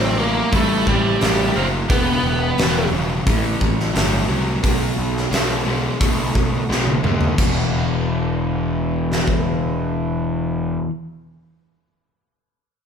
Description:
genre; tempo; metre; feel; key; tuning
blues rock power trio and southern rock; 88 BPM; 4/4; straight; E minor; A4 = 440 Hz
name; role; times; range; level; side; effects
octave-fuzz lead guitar; melody; 0.0-2.9 s; G3 to C4; -21 LUFS; equal; distortion
nasal lead guitar with a parked wah; second line; 0.0-2.9 s; C4 to A#4; -27 LUFS; right 6 dB; overdrive
overdriven semi-hollow guitar; riff; 0.0-10.9 s; E2 to A3; -22 LUFS; left 2 dB; none
fuzz picked electric bass; bass; 0.0-10.8 s; E1 to D#2; -23 LUFS; equal; overdrive
big rock drum kit; drums; 0.5-9.4 s; crash cymbal, hi-hat, kick drum, snare drum, toms; -21 LUFS; equal; none
room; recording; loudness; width
moderate large studio reverb, RT60 1.3 s; band playing live in one room; -17 LUFS; side -7 dB against mid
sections
0.0-7.4 A section; 7.4-10.1 B section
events
drum fill 6.7-7.4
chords
0.0 Am7; 1.9 Em; 3.3 Am7; 4.6 B7(no3); 7.4 E5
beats
0.53 1.21 | 1.90 2.58 3.27 3.95 | 4.64 5.32 6.01 6.70 | 7.38 8.07 8.76 9.44

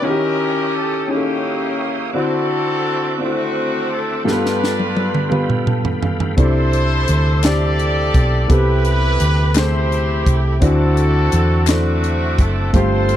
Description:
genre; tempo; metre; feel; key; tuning
slow gospel; 57 BPM (dotted quarters); 6/8; straight; unclear; A4 = 440 Hz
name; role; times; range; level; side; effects
warm horn section; melody; 0.0-13.2 s; A3 to D5; -21 LUFS; equal; none
warm concert grand piano; accompaniment; 0.0-13.2 s; G2 to A5; -21 LUFS; left 1 dB; none
tonewheel organ; sustained chords; 0.0-13.2 s; A4 to Eb6; -29 LUFS; right 3 dB; fast rotary speaker, chorus vibrato
crisp fusion drum kit; drums; 4.3-13.2 s; hi-hat, kick drum, snare drum, toms; -18 LUFS; equal; none
hollow-body short-scale fingered electric bass; bass; 6.4-13.2 s; F#1 to E2; -16 LUFS; equal; none
group handclap; percussion; 7.4-12.0 s; none; -25 LUFS; left 18 dB; none
room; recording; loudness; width
little or no reverb; dry, close 1970s-style studio recording; -15 LUFS; side -11 dB against mid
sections
0.0-13.2 A section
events
drum fill 4.3-6.4; grand piano fill 5.3-6.4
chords
0.0 Eb7b9; 2.1 D9; 4.3 G9; 6.4 C69; 8.5 Am9/C; 10.6 D9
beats
| 0.02 1.08 | 2.14 3.20 | 4.26 5.32 | 6.38 7.44 | 8.50 9.56 | 10.62 11.68 | 12.74

